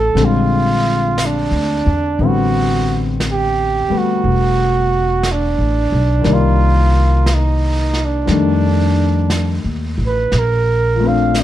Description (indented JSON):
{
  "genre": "jazz ballad",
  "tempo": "59 BPM",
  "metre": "4/4",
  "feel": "swing 68% on 8ths",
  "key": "unclear",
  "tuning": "A4 = 440 Hz",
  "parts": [
    { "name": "warm flugelhorn", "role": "melody", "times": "0.0-11.4 s", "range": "D4 to F5", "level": "-18 LUFS", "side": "right 4 dB", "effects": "none" },
    { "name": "warm concert grand piano", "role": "accompaniment", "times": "0.0-11.4 s", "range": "D3 to D5", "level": "-19 LUFS", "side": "left 5 dB", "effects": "none" },
    { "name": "upright bass", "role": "bass", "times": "0.0-11.4 s", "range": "E1 to F2", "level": "-16 LUFS", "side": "equal", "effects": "none" },
    { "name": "vintage brush drum kit", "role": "drums", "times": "0.2-11.4 s", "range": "brushed snare drum, hi-hat, snare drum", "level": "-27 LUFS", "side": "right 2 dB", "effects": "none" }
  ],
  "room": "light reverb",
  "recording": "dark, warm production",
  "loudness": "-13 LUFS",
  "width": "side -13 dB against mid",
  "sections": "0.0-11.4 A section",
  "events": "none",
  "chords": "0.2 Bb13; 2.2 Am11; 6.2 Cm9; 8.3 F13; 10.3 Bbmaj7",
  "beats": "0.15 1.17 | 2.18 3.19 4.21 5.22 | 6.24 7.25 8.27 9.29 | 10.32 11.34"
}